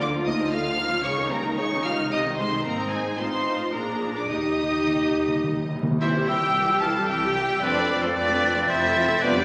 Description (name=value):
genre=quick classical-period movement for symphony orchestra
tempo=103-116 BPM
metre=3/4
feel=rubato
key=Eb major, C major from 6.0 s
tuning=A4 = 440 Hz
part: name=rich chamber violin section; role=melody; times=0.0-9.4 s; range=C5 to F6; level=-30 LUFS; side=equal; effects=none
part: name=clear chamber violin section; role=second line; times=0.0-9.4 s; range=C4 to F5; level=-34 LUFS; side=equal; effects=none
part: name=warm symphonic viola section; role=accompaniment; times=0.0-9.4 s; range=C3 to Ab4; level=-30 LUFS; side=equal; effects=none
part: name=dark French horn section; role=sustained chords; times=0.0-9.4 s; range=E3 to F4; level=-34 LUFS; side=equal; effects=none
part: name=rich studio double bass section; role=bass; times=0.0-9.4 s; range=F1 to Eb2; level=-38 LUFS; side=equal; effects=none
part: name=warm chamber cello section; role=bass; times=0.0-9.4 s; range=C2 to D3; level=-39 LUFS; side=equal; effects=none
part: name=timpani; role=percussion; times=4.3-6.0 s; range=Eb3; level=-31 LUFS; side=equal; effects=none
part: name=clear oboe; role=second line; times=6.0-9.4 s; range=A4 to F5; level=-28 LUFS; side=equal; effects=none
part: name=mellow hollow silver concert flute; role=second line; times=6.0-9.4 s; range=E6 to A6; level=-31 LUFS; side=equal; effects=none
part: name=warm clarinet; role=second line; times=6.0-9.4 s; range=B3 to C4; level=-35 LUFS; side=equal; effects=none
room=wet recital hall reverb, RT60 1.4 s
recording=vinyl crackle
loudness=-24 LUFS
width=mono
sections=0.0-6.0 A section; 6.0-9.4 B section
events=timpani fill 4.3-6.0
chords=0.0 Bb/D; 1.0 Eb7/Db; 2.1 Ab/C; 2.6 Ab; 3.2 F7/A; 3.7 Bb7; 4.3 Eb; 6.0 C; 7.6 F